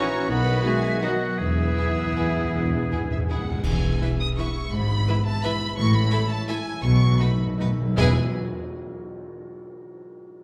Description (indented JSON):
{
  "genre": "classical, orchestral ballroom waltz",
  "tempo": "150-186 BPM",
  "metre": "3/4",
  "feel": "rubato",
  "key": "E major",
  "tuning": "A4 = 440 Hz",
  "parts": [
    { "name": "dark chamber violin section", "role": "melody", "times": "0.0-8.2 s", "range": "E5 to D#6", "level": "-35 LUFS", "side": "equal", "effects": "none" },
    { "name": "clear oboe", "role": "second line", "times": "0.0-3.5 s", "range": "F#4 to G#4", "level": "-34 LUFS", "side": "equal", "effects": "none" },
    { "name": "mellow hollow small flute group", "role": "second line", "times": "0.0-3.3 s", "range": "B4 to A#5", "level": "-36 LUFS", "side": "equal", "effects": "none" },
    { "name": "rich chamber violin section", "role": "second line", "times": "0.0-8.2 s", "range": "D#4 to E5", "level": "-37 LUFS", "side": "equal", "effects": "none" },
    { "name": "warm clarinet", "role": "second line", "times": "0.0-3.4 s", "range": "B3 to C#4", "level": "-37 LUFS", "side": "equal", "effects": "none" },
    { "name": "dark bassoon", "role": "accompaniment", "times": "0.0-3.5 s", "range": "D#3 to E3", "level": "-36 LUFS", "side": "equal", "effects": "none" },
    { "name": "rich chamber viola section", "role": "accompaniment", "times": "0.0-8.2 s", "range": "E3 to C#5", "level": "-36 LUFS", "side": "equal", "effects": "none" },
    { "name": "clear trombone section", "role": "sustained chords", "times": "0.0-3.4 s", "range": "D#3 to B3", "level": "-41 LUFS", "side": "equal", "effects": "none" },
    { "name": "mellow French horn section", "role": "sustained chords", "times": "0.0-8.1 s", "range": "A3 to G#4", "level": "-38 LUFS", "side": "equal", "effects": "none" },
    { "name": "concert harp", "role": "arpeggios", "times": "0.0-9.1 s", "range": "G#2 to C#6", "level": "-34 LUFS", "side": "equal", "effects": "none" },
    { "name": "mellow trumpet section", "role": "stabs", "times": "0.0-3.4 s", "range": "F#4 to G#4", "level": "-41 LUFS", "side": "equal", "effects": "none" },
    { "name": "warm chamber cello section", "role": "bass", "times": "0.0-8.2 s", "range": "E2 to C#4", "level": "-33 LUFS", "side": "equal", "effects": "none" },
    { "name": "mellow tuba", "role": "bass", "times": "0.3-2.8 s", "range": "E1 to B1", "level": "-36 LUFS", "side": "equal", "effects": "none" },
    { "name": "rich chamber double bass section", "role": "bass", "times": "0.3-8.2 s", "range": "E1 to E2", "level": "-27 LUFS", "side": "equal", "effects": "none" },
    { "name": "cymbal swell, clash cymbals, concert bass drum and tam-tam", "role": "percussion", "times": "1.4-4.3, 8.0-9.4 s", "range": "none", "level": "-36 LUFS", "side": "equal", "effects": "none" },
    { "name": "timpani", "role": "percussion", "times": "1.4-4.2, 6.8-8.1 s", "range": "E2 to B2", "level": "-32 LUFS", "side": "equal", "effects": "none" }
  ],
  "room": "wet scoring stage reverb, RT60 1.8 s",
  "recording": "none",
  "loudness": "-23 LUFS",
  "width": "mono",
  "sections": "0.0-3.7 A section; 3.7-8.0 B section; 8.0-9.1 C section",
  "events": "timpani fill 1.4-3.7, 6.8-8.0; band accent 3.7-4.0, 8.0-8.3",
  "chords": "0.3 B; 1.4 E; 4.7 E/G#; 5.8 A; 6.8 B7; 8.0 E"
}